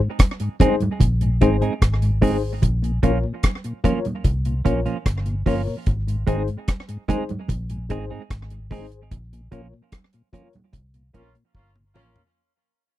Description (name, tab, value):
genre	roots reggae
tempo	74 BPM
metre	4/4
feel	straight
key	unclear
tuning	A4 = 440 Hz
part	mellow tonewheel organ	accompaniment	0.0-12.2 s	Ab2 to Db4	-27 LUFS	left 2 dB	overdrive, chorus vibrato, slow rotary speaker
part	deep reggae drum kit	drums	0.2-12.3 s	hi-hat, kick drum, rim click, toms	-19 LUFS	equal	none
part	congas	percussion	0.2-12.1 s	none	-30 LUFS	right 4 dB	none
part	clean electric guitar	accompaniment	0.6-12.1 s	F3 to Ab4	-25 LUFS	right 6 dB	tape echo
part	mellow reed electric piano	stabs	0.6-12.2 s	Eb4 to Db5	-26 LUFS	left 8 dB	fast tremolo
part	vintage muted fingered electric bass	bass	1.0-12.2 s	G1 to C2	-23 LUFS	equal	none
part	warm horn section	second line	11.1-12.2 s	Bb3 to F4	-64 LUFS	right 1 dB	tape echo
room	little or no reverb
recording	dry, close 1970s-style studio recording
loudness	-19 LUFS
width	side -14 dB against mid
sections	0.0-12.4 A section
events	fade-out 0.0-12.4; band accent 9.1-12.4; drum fill 11.5-12.4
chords	0.0 Ab; 2.6 Bbm; 5.9 Ab; 9.1 Bbm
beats	0.20 1.01 1.82 | 2.63 3.44 4.25 5.06 | 5.87 6.68 7.49 8.30 | 9.12 9.93 10.74 11.55